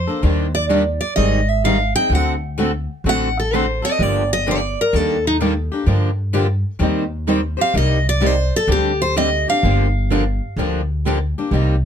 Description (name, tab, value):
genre	acoustic string swing (jazz manouche)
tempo	128 BPM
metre	4/4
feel	swing 66% on 8ths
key	G minor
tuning	A4 = 439 Hz
part	picked steel-string acoustic guitar	melody	0.0-10.5 s	Eb4 to G5	-19 LUFS	right 1 dB	none
part	upright bass	bass	0.0-11.8 s	G1 to G2	-20 LUFS	equal	none
part	picked steel-string acoustic guitar	accompaniment	0.1-11.8 s	C3 to C5	-22 LUFS	left 7 dB	none
part	picked steel-string acoustic guitar	accompaniment	0.2-11.7 s	C3 to C5	-23 LUFS	right 7 dB	none
room	little or no reverb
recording	close, detailed microphones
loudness	-16 LUFS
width	side -8 dB against mid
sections	0.0-11.5 A section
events	steel-string acoustic guitar solo 0.0-11.8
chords	0.2 Ebmaj7; 1.2 Abmaj7; 2.1 D7; 4.0 Gm7; 4.9 Ebmaj7; 5.9 Gm7; 6.8 Eb6; 7.8 Cm7; 8.7 D7sus4; 9.6 Gm7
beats	| 0.24 0.71 1.18 1.65 | 2.12 2.58 3.05 3.52 | 3.99 4.46 4.93 5.40 | 5.87 6.34 6.81 7.28 | 7.75 8.22 8.69 9.16 | 9.63 10.10 10.57 11.04 | 11.52